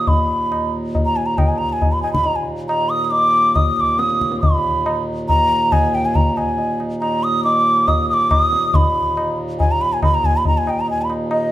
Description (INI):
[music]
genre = indian classical, Hindustani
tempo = 139 BPM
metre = 5/4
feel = straight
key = unclear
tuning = A4 = 440 Hz
[part]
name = hollow bansuri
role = melody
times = 0.0-11.5 s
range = Eb5 to Eb6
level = -17 LUFS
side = equal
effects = none
[part]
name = hand-pumped harmonium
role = drone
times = 0.0-11.5 s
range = Eb2 to Bb2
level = -24 LUFS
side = right 1 dB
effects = none
[part]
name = tabla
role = percussion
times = 0.1-11.5 s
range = none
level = -20 LUFS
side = left 1 dB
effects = none
[sound]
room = wet large studio reverb, RT60 1.5 s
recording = band playing live in one room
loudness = -15 LUFS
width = side -14 dB against mid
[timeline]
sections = 0.0-11.5 A section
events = none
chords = none